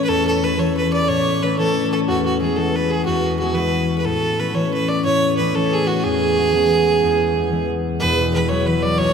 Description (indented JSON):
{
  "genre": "celtic folk, Celtic slide",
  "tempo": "121 BPM (dotted quarters)",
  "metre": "12/8",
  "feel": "straight",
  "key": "E major",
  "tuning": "A4 = 440 Hz",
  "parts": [
    { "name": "bright fiddle", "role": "melody", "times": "0.0-9.1 s", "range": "F#4 to D5", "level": "-19 LUFS", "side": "right 3 dB", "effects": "analog delay" },
    { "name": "concert harp", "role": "accompaniment", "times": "0.0-9.1 s", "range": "E1 to C#4", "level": "-19 LUFS", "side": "left 2 dB", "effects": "none" }
  ],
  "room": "wet cathedral reverb, RT60 5.3 s",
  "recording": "dreamy mix soaked in reverb",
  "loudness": "-16 LUFS",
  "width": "side -6 dB against mid",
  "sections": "0.0-8.0 A section; 8.0-9.1 B section",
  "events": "none",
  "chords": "0.0 A; 2.1 E; 4.1 A; 6.0 E; 8.0 Esus2"
}